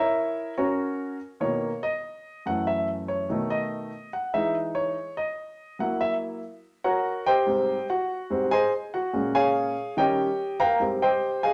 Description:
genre	jazz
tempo	144 BPM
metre	4/4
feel	straight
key	unclear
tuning	A4 = 442 Hz
part	warm concert grand piano	solo	0.0-11.5 s	Gb2 to Bb5	-26 LUFS	equal	none
room	wet studio reverb, RT60 0.9 s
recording	none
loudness	-26 LUFS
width	mono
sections	0.0-10.8 A section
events	grand piano solo 0.0-11.5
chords	0.0 Gb7; 0.8 Bmaj9; 2.5 Gbm7; 3.3 B7; 4.1 E6; 5.8 Gb7; 7.5 Abmaj7; 9.1 Bbm7; 10.0 Eb9; 10.8 Ab6

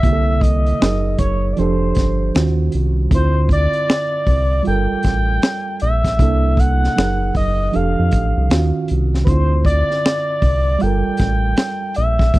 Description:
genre	R&B, neo-soul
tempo	78 BPM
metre	4/4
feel	swing 62% on 16ths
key	unclear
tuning	A4 = 440 Hz
part	expressive synth lead	melody	0.0-12.4 s	B4 to G5	-21 LUFS	left 1 dB	chorus
part	reed electric piano	accompaniment	0.0-12.4 s	C3 to Bb4	-22 LUFS	right 4 dB	overdrive
part	round analog bass	bass	0.0-12.4 s	F1 to F2	-17 LUFS	equal	none
part	crunchy breakbeat drum kit	drums	0.0-12.4 s	finger snaps, hi-hat, kick drum, snare drum	-18 LUFS	equal	none
room	small room ambience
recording	dry, close 1970s-style studio recording, lossy compression artefacts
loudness	-14 LUFS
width	side -18 dB against mid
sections	0.0-12.4 A section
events	none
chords	0.0 C13; 0.8 Gb69; 1.6 F69; 2.3 Ebm9; 3.1 Dm9; 4.7 Gm9; 6.2 C13; 7.0 Gb69; 7.7 F69; 8.5 Ebm9; 9.3 Dm9; 10.8 Gm9

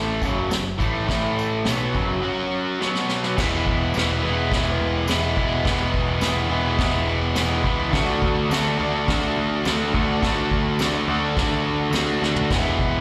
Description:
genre	garage rock duo or trio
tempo	105 BPM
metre	4/4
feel	straight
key	unclear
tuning	A4 = 440 Hz
part	crunchy overdriven guitar	riff	0.0-13.0 s	F#2 to F#4	-24 LUFS	equal	slapback echo
part	growling picked electric bass	bass	0.0-13.0 s	E1 to D2	-28 LUFS	equal	overdrive
part	vintage brush drum kit	drums	0.2-12.9 s	crash cymbal, hi-hat, kick drum, snare drum, toms	-28 LUFS	equal	none
part	tambourine	percussion	0.2-12.1 s	none	-43 LUFS	equal	none
room	light reverb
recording	live gig heard through the venue's PA, recital hall reverb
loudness	-22 LUFS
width	mono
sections	0.0-3.4 A section; 3.4-13.0 B section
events	drum fill 2.8-3.4, 12.2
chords	0.2 F#m; 1.1 A5; 1.7 F#5; 2.8 B5; 3.4 E; 7.9 D; 12.5 E

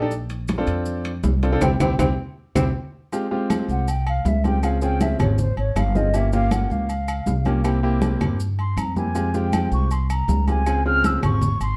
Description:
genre	Afro-Cuban jazz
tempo	159 BPM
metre	4/4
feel	straight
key	F harmonic minor from 3.1 s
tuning	A4 = 440 Hz
part	warm baby grand piano	accompaniment	0.0-11.4 s	Ab3 to A4	-28 LUFS	equal	none
part	upright bass	bass	0.0-11.8 s	G1 to G2	-24 LUFS	equal	none
part	congas	percussion	0.1-11.8 s	none	-28 LUFS	equal	none
part	maracas	percussion	0.1-11.8 s	none	-46 LUFS	equal	none
part	timbales and agogo bells	percussion	0.3-11.8 s	none	-35 LUFS	equal	none
part	claves	percussion	0.5-11.4 s	none	-42 LUFS	equal	none
part	breathy mellow concert flute	melody	1.6-11.8 s	C5 to F6	-29 LUFS	equal	plate reverb
part	breathy tenor saxophone	second line	1.6-2.6 s	C4	-29 LUFS	equal	none
room	moderate studio reverb, RT60 0.7 s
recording	dark, warm production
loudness	-22 LUFS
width	mono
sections	0.0-3.1 A section; 3.1-11.8 B section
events	drum fill 1.6-3.1; band accent 1.6-3.1; grand piano fill 2.0-3.1; flute solo 3.1-11.8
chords	0.1 Bbmaj9; 1.6 C; 3.1 Fmadd9; 4.6 Dbmaj7; 6.1 Gm7b5; 7.6 C7; 9.2 Fmadd9; 10.7 Dbmaj7

